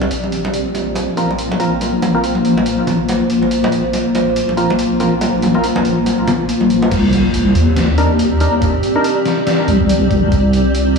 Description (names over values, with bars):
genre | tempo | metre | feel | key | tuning
deep dubstep | 141 BPM | 4/4 | swing 59% on 16ths, half-time | C minor | A4 = 440 Hz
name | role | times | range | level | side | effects
granular cloud pad | sustained chords | 0.0-11.0 s | Bb3 to D5 | -17 LUFS | left 1 dB | built-in reverb
deep soft wobble bass | bass | 0.0-11.0 s | Bb1 to Eb2 | -17 LUFS | equal | chorus
congas | percussion | 0.0-6.9 s | none | -21 LUFS | right 1 dB | dub echo
trip hop sampler-style drum kit | drums | 0.1-11.0 s | crash cymbal, hi-hat, snare drum | -26 LUFS | left 1 dB | studio reverb
percussive organ stab | stabs | 1.2-9.1 s | C4 to Bb4 | -22 LUFS | equal | analog chorus, dub echo
electronic kick drum | drums | 6.9-10.4 s | none | -21 LUFS | equal | studio reverb
impact | sound effects | 6.9-8.6 s | none | -24 LUFS | right 1 dB | none
room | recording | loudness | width
wet church reverb, RT60 3.6 s | dreamy mix soaked in reverb, vinyl crackle, studio ambience | -13 LUFS | side -5 dB against mid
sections
0.0-6.9 A section; 6.9-11.0 B section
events
drop 6.9-11.0; impact 6.9-8.6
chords
0.1 Bbsus2; 6.9 Cm7